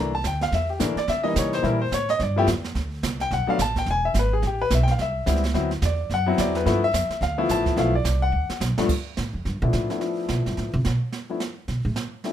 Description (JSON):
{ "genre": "jazz piano trio", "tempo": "215 BPM", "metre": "4/4", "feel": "swing 60% on 8ths", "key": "G mixolydian", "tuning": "A4 = 441 Hz", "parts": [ { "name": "clear baby grand piano", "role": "melody", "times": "0.0-12.3 s", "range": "G2 to Bb5", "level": "-23 LUFS", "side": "left 3 dB", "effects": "none" }, { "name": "upright bass", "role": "bass", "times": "0.0-12.0 s", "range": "E1 to C#3", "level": "-25 LUFS", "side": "right 1 dB", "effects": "none" }, { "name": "jazz brush drum kit", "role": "drums", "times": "0.2-12.3 s", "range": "brushed snare drum, crash cymbal, hi-hat, kick drum, snare drum", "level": "-30 LUFS", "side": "right 5 dB", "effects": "none" } ], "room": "light reverb", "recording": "minimal, uncompressed stereo recording", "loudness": "-21 LUFS", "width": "side -10 dB against mid", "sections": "0.0-8.9 A section; 8.9-12.3 A section", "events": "grand piano solo 0.0-8.9; drum fill 8.3-8.9; upright bass solo 8.9-12.3", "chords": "0.0 C13; 1.1 C#dim7; 2.2 G5; 3.3 B7(no3); 3.9 E; 4.4 Am7; 5.5 D13; 6.7 G13; 8.3 D6; 8.9 G13", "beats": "0.24 0.52 0.80 | 1.07 1.35 1.63 1.91 | 2.19 2.47 2.75 3.03 | 3.31 3.59 3.87 4.15 | 4.42 4.70 4.98 5.26 | 5.54 5.82 6.10 6.38 | 6.66 6.93 7.21 7.49 | 7.77 8.05 8.33 8.61 | 8.89 9.17 9.45 9.72 | 10.00 10.28 10.56 10.84 | 11.12 11.40 11.68 11.96 | 12.24" }